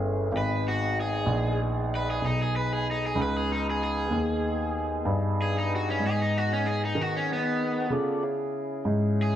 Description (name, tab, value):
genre	blues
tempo	63 BPM (dotted quarters)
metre	12/8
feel	straight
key	G# harmonic minor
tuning	A4 = 440 Hz
part	overdriven semi-hollow guitar	melody	0.0-9.4 s	B3 to B4	-30 LUFS	equal	spring reverb
part	tonewheel organ	sustained chords	0.0-9.4 s	B3 to D5	-33 LUFS	left 2 dB	slow rotary speaker
part	dark baby grand piano	bass	0.0-9.4 s	G1 to D#3	-27 LUFS	equal	none
room	moderate studio reverb, RT60 1.0 s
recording	band playing live in one room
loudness	-25 LUFS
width	side -10 dB against mid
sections	0.0-9.4 A section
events	overdriven electric guitar solo 0.0-9.4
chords	0.3 G#m; 7.9 C#m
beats	| 0.34 1.28 2.23 3.17 | 4.12 5.07 6.02 6.97 | 7.92 8.87